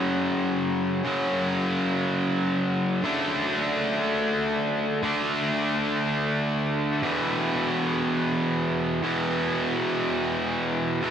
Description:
rock; 60 BPM (dotted quarters); 6/8; straight; A4 = 439 Hz
overdriven electric guitar; solo; 0.0-11.1 s; E2 to D4; -23 LUFS; equal; diffuse ambient delay
wet huge ambient reverb, RT60 7.6 s; dreamy mix soaked in reverb; -23 LUFS; side -8 dB against mid
0.0-11.1 A section
0.0 F#5; 3.0 D5; 7.0 E5
0.04 | 1.04 2.04 | 3.04 4.03 | 5.03 6.03 | 7.03 8.03 | 9.03 10.03 | 11.02

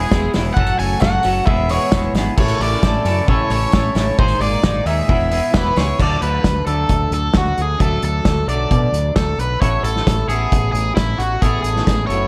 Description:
indie rock; 133 BPM; 4/4; straight; A4 = 440 Hz
crunchy overdriven guitar; melody; 0.0-12.3 s; E4 to G#5; -23 LUFS; equal
brassy analog pad; sustained chords; 0.0-6.0 s; A#2 to F#4; -32 LUFS; equal
twangy electric guitar; riff; 0.0-12.3 s; D3 to C#5; -26 LUFS; equal; lush chorus
growling fingered electric bass; bass; 0.0-12.3 s; E1 to B2; -23 LUFS; equal; overdrive
loose indie drum kit; drums; 0.1-12.2 s; crash cymbal, hi-hat, kick drum, snare drum; -21 LUFS; equal
tambourine; percussion; 0.1-5.9 s; -43 LUFS; equal
light reverb; -17 LUFS; mono
0.0-6.0 A section; 6.0-12.3 B section
0.0 E; 0.6 F#m; 1.5 E; 2.4 A; 4.2 G#sus2; 5.1 E; 6.0 D; 9.6 Aadd9
0.11 | 0.56 1.01 1.46 1.91 | 2.37 2.82 3.27 3.72 | 4.17 4.63 5.08 5.53 | 5.99 6.44 6.89 7.35 | 7.80 8.25 8.71 9.16 | 9.61 10.07 10.52 10.97 | 11.42 11.87

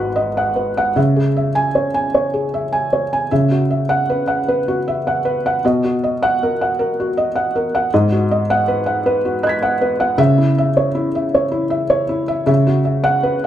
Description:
neoclassical minimalist piano; 52 BPM (dotted quarters); 6/8; rubato; C# dorian; A4 = 440 Hz
felt-muted upright piano; solo; 0.0-13.5 s; G#1 to B6; -15 LUFS; equal
moderate large studio reverb, RT60 1.0 s; band playing live in one room; -15 LUFS; side -11 dB against mid
1.0-13.5 A section
0.0 G#m7; 1.0 C#m; 3.3 F#7sus4/C#; 5.6 Bmaj7; 7.9 G#m7; 10.2 C#m; 12.5 F#7sus4/C#
| 0.97 2.14 | 3.31 4.47 | 5.62 6.77 | 7.91 9.04 | 10.18 11.33 | 12.48

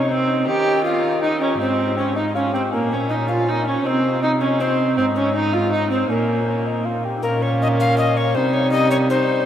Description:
classical, renaissance-style consort dance; 160 BPM; 3/4; straight; Bb dorian; A4 = 440 Hz
alto recorder; melody; 0.0-9.5 s; Bb4 to G5; -24 LUFS; left 4 dB
warm bassoon; accompaniment; 0.0-9.5 s; G3 to G4; -25 LUFS; left 1 dB
rich cello; bass; 0.0-9.5 s; Ab2 to Eb3; -23 LUFS; right 1 dB
warm viola; second line; 0.1-9.5 s; Bb3 to G4; -21 LUFS; right 2 dB
wet huge ambient reverb, RT60 8.1 s; in a vast, echoing space; -17 LUFS; side -10 dB against mid
0.0-7.2 A section; 7.2-9.5 A section
0.5 Eb; 1.6 Ab; 2.7 Bbm; 3.9 Cm; 5.0 Ab5; 6.1 Bbm; 8.4 Cm
0.10 | 0.47 0.85 1.22 | 1.60 1.97 2.35 | 2.73 3.10 3.48 | 3.85 4.23 4.60 | 4.97 5.35 5.72 | 6.10 6.48 6.86 | 7.24 7.62 7.99 | 8.37 8.74 9.11

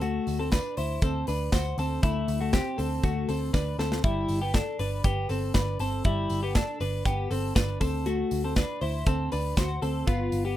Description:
jangly indie pop; 119 BPM; 4/4; straight; A4 = 440 Hz
twelve-string electric guitar; arpeggios; 0.0-10.6 s; G3 to C5; -29 LUFS; left 2 dB; slapback echo
vintage muted picked electric bass; bass; 0.0-10.6 s; G1 to D2; -30 LUFS; equal
modern studio drum kit; drums; 0.0-10.4 s; hi-hat, kick drum, snare drum; -28 LUFS; equal
tambourine; percussion; 0.0-10.4 s; -47 LUFS; right 11 dB
little or no reverb; rough home demo mix; -25 LUFS; side -13 dB against mid
0.0-10.6 A section
drum fill 3.5-4.0
0.0 D7; 4.0 G6; 7.8 D7
| 0.02 0.52 1.02 1.53 | 2.03 2.53 3.04 3.54 | 4.04 4.54 5.05 5.55 | 6.05 6.56 7.06 7.56 | 8.06 8.57 9.07 9.57 | 10.08

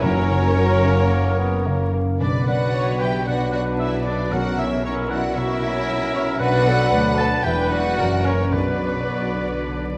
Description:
classical, dramatic, fast romantic movement for symphony orchestra; 113 BPM; 4/4; uneven beats, rubato; B minor; A4 = 441 Hz
warm symphonic violin section; melody; 0.0-10.0 s; B4 to A5; -33 LUFS; equal
mellow flute section; second line; 0.0-10.0 s; F#4 to F#5; -32 LUFS; equal
warm oboe; second line; 0.0-10.0 s; B4 to A5; -31 LUFS; equal
warm symphonic violin section; second line; 0.0-10.0 s; B3 to A4; -32 LUFS; equal
warm symphonic viola section; accompaniment; 0.0-10.0 s; D4 to D5; -31 LUFS; equal
warm French horn section; sustained chords; 0.0-10.0 s; E3 to D4; -31 LUFS; equal
concert harp; arpeggios; 0.0-10.0 s; E2 to E4; -29 LUFS; equal
clear trumpet section; stabs; 0.0-10.0 s; A#4 to B4; -31 LUFS; equal
rich symphonic cello section; bass; 0.0-10.0 s; D2 to E3; -30 LUFS; equal
rich symphonic double bass section; bass; 0.0-10.0 s; E1 to D2; -29 LUFS; equal
timpani; percussion; 0.0-5.1, 8.5-9.3 s; F#2 to B2; -32 LUFS; equal
mellow bassoon; accompaniment; 0.6-2.2 s; F#3 to B3; -29 LUFS; equal
wet scoring stage reverb, RT60 1.8 s; vinyl crackle; -20 LUFS; mono
0.0-10.0 A section
0.0 F#; 2.2 Bm; 4.3 F#7/B; 6.4 Bm; 7.4 Em7; 8.0 F#7; 8.5 Bm
| 0.03 0.58 1.12 1.66 | 2.21 2.74 3.27 3.79 | 4.31 4.84 5.36 5.88 | 6.39 6.91 7.43 7.97 | 8.52 9.09 9.65

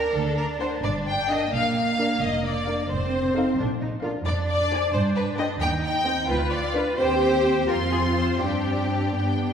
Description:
quick classical-period movement for string orchestra; 88 BPM (dotted quarters); 6/8; rubato; C minor from 4.3 s; A4 = 440 Hz
clear symphonic violin section; melody; 0.0-9.5 s; F5 to C6; -34 LUFS; left 4 dB
clear symphonic violin section; second line; 0.0-9.5 s; G4 to G5; -25 LUFS; left 1 dB
dark symphonic viola section; accompaniment; 0.0-9.5 s; B3 to C5; -29 LUFS; equal
rich symphonic cello section; bass; 0.0-9.5 s; Bb3 to G4; -28 LUFS; right 2 dB
warm symphonic double bass section; bass; 0.1-9.5 s; F1 to G2; -28 LUFS; right 2 dB
wet scoring stage reverb, RT60 1.9 s; heard from further back in the room; -21 LUFS; side -7 dB against mid
0.0-9.5 A section
0.1 D7; 0.8 Gm; 1.5 Bb; 2.9 F7; 3.6 Bb; 4.3 Dm7b5/F; 4.9 G; 5.6 Cm/Eb; 6.3 Bdim/D; 7.0 Cm/Eb; 7.7 F5; 8.4 Gsus4
| 0.14 0.84 | 1.53 2.22 | 2.89 3.57 | 4.26 4.93 | 5.61 6.28 | 6.97 7.68 | 8.39 9.12

